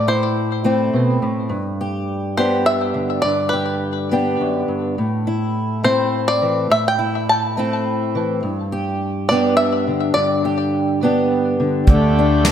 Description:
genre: acoustic folk duo or small band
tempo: 104 BPM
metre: 3/4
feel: straight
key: unclear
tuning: A4 = 440 Hz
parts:
  - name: bluegrass banjo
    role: melody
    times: 0.0-11.3 s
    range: B4 to A5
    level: -20 LUFS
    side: equal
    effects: ping-pong delay
  - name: fingerpicked acoustic archtop guitar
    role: accompaniment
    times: 0.0-12.5 s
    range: F#2 to G4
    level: -18 LUFS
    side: equal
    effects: analog chorus
  - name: pedal harmonium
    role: sustained chords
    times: 11.9-12.5 s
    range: D3 to G4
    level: -19 LUFS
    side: equal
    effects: stereo widening
  - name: upright bass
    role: bass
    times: 11.9-12.5 s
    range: D2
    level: -16 LUFS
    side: equal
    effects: none
  - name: soft brush drum kit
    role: drums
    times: 11.9-12.5 s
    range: hi-hat, kick drum, snare drum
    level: -13 LUFS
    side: equal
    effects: none
room: wet plate reverb, RT60 2.1 s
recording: dreamy mix soaked in reverb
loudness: -16 LUFS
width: side -9 dB against mid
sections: 0.0-11.9 A section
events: none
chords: 0.0 Am; 1.5 G; 5.0 Am; 8.4 G; 11.9 Dsus4

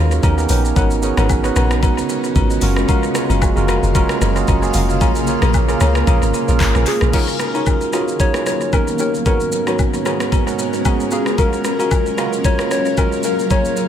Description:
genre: amapiano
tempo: 113 BPM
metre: 4/4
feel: swing 55% on 16ths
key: unclear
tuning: A4 = 438 Hz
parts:
  - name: tine electric piano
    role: accompaniment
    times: 0.0-13.9 s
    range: Ab2 to F5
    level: -21 LUFS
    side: right 5 dB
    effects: tape echo
  - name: granular cloud pad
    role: sustained chords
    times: 0.0-13.9 s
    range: Db3 to F5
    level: -23 LUFS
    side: equal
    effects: built-in reverb
  - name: deep log drum bass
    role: bass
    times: 0.0-7.1 s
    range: F1 to Eb2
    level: -17 LUFS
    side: left 1 dB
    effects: none
  - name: smooth R&B drum kit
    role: drums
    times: 0.1-13.9 s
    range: crash cymbal, handclaps, hi-hat, kick drum, rim click, shaker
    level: -19 LUFS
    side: equal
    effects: tape echo
  - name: agogo bells and woodblock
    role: percussion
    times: 0.2-13.6 s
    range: none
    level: -28 LUFS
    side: left 7 dB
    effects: tape echo
  - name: deep mellow chord stab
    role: stabs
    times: 0.5-13.6 s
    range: Eb4 to G5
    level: -27 LUFS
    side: left 3 dB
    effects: chorus, tape echo
  - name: soft struck synth lead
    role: melody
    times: 6.9-13.9 s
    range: Ab4 to Db5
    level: -22 LUFS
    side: left 3 dB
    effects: chorus, tape echo
room: light reverb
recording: echo-heavy mix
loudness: -14 LUFS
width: side -9 dB against mid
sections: 0.0-7.1 A section; 7.1-13.9 B section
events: drop 0.0-7.1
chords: 0.2 Eb7b13; 0.8 Abm11; 2.6 Gbmaj7; 5.0 Bbm7; 7.1 Ebm9; 8.7 Eb7b13; 9.3 Abm11; 11.1 Gbmaj7

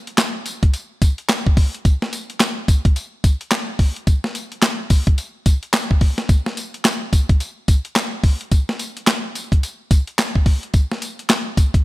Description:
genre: R&B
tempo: 108 BPM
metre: 4/4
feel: swing 61% on 16ths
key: none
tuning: none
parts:
  - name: boom bap sampler-style drum kit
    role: drums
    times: 0.1-11.8 s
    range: handclaps, hi-hat, kick drum, snare drum, tambourine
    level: -16 LUFS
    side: equal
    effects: none
  - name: group handclap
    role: percussion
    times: 0.2-11.5 s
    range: none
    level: -32 LUFS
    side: right 2 dB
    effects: none
room: light reverb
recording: none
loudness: -17 LUFS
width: side -19 dB against mid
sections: 0.0-11.8 A section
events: none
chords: none

